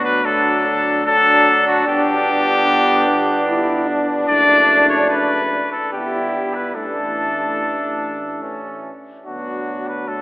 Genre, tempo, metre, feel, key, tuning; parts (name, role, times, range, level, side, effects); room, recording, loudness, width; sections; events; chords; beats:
classical, brass quintet; 74 BPM; 3/4; straight; D major; A4 = 440 Hz
warm trumpet; melody; 0.0-10.2 s; F#4 to D5; -17 LUFS; left 1 dB
warm flugelhorn; second line; 0.0-10.2 s; C#4 to E4; -23 LUFS; right 1 dB
mellow French horn; accompaniment; 0.0-10.2 s; A3 to E4; -23 LUFS; equal
warm trombone; accompaniment; 0.0-10.2 s; E3 to B3; -26 LUFS; right 1 dB
dark tuba; bass; 0.0-10.2 s; F#1 to D2; -30 LUFS; right 1 dB
wet church reverb, RT60 3.8 s; telephone sound; -14 LUFS; side -20 dB against mid
0.0-10.2 A section
0.0 D; 1.9 G; 4.3 D/F#; 5.9 Em/G; 6.7 Asus4; 9.3 D
0.24 1.05 | 1.86 2.67 3.48 | 4.28 5.09 5.92 | 6.75 7.59 8.42 | 9.26 10.07